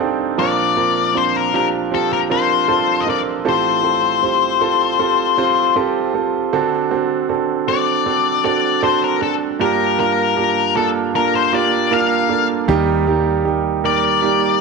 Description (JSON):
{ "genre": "pop ballad", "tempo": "78 BPM", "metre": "4/4", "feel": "straight", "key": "unclear", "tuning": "A4 = 441 Hz", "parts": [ { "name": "clear grand piano", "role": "accompaniment", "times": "0.0-14.6 s", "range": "A1 to G5", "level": "-18 LUFS", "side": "right 7 dB", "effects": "none" }, { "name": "octave-fuzz lead guitar", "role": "melody", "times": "0.4-14.6 s", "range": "A4 to F5", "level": "-17 LUFS", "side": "left 13 dB", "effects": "distortion" }, { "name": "fingered electric bass", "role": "bass", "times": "12.7-14.6 s", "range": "Eb2", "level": "-22 LUFS", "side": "left 1 dB", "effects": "none" } ], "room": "wet echo chamber reverb, RT60 1.4 s, studio reverb", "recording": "1960s-style stereo with parts hard left and right", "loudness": "-15 LUFS", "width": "side -3 dB against mid", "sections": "0.0-6.5 A section; 6.5-14.6 B section", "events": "grand piano fill 0.0-0.4", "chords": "0.4 Bbadd9; 3.5 Fadd9/A; 6.5 D7; 9.6 Gm7; 12.7 Eb" }